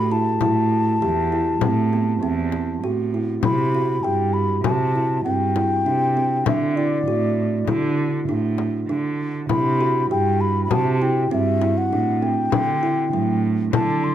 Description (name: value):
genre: contemporary instrumental, chamber music in an uneven meter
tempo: 99 BPM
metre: 5/4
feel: straight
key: unclear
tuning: A4 = 441 Hz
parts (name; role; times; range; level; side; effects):
- mellow baroque flute; melody; 0.0-14.1 s; D5 to C6; -24 LUFS; left 3 dB; none
- kalimba; arpeggios; 0.0-14.1 s; F#3 to G4; -23 LUFS; right 1 dB; none
- warm cello; bass; 0.0-14.1 s; E2 to D3; -23 LUFS; right 3 dB; none
- frame drum; percussion; 0.1-14.0 s; none; -25 LUFS; left 8 dB; none
room: light reverb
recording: close, detailed microphones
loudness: -18 LUFS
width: side -11 dB against mid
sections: 0.0-3.4 A section; 3.4-14.1 B section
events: none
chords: 0.4 Am; 3.4 Cmaj7; 6.5 D5; 9.5 Cmaj7; 12.5 Dsus4